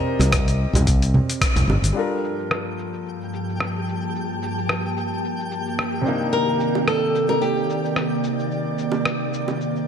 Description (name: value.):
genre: sunset chillout.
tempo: 110 BPM.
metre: 4/4.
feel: swing 56% on 16ths.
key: G minor.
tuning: A4 = 443 Hz.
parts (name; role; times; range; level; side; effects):
flamenco guitar; melody; 0.0-1.6, 6.3-9.9 s; G4 to Bb4; -24 LUFS; left 1 dB; vintage 12-bit sampler grit, digital delay.
clear concert grand piano; accompaniment; 0.0-9.9 s; C3 to Eb5; -28 LUFS; moving between left 3 dB and right 4 dB; auto-pan, ping-pong delay.
fretless electric bass; bass; 0.2-1.9 s; G1 to C2; -19 LUFS; equal; none.
dusty soul sampler-style drum kit; drums; 0.2-9.9 s; congas, hi-hat, rim click, shaker; -25 LUFS; equal; low-pass filter on snare, low-pass filter on hats, low-pass filter on perc.
bongos; percussion; 0.2-1.8, 6.8-9.6 s; none; -31 LUFS; right 4 dB; none.
electronic kick drum; drums; 0.3-1.5 s; none; -22 LUFS; equal; none.
airy breathy pad; sustained chords; 2.0-9.9 s; G2 to A5; -25 LUFS; right 1 dB; chorus.
twinkling granular texture; texture; 2.7-9.9 s; G4 to G5; -33 LUFS; left 2 dB; built-in reverb.
room: moderate lush hall reverb, RT60 2.1 s.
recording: none.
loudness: -20 LUFS.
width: side -7 dB against mid.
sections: 0.0-2.0 A section; 2.0-9.9 B section.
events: filter sweep on grand piano 0.0-2.0; band accent 1.4; filter sweep on analog synth pad 2.0-9.9.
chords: 0.0 Cm9; 2.0 Gm9; 6.1 Cm9.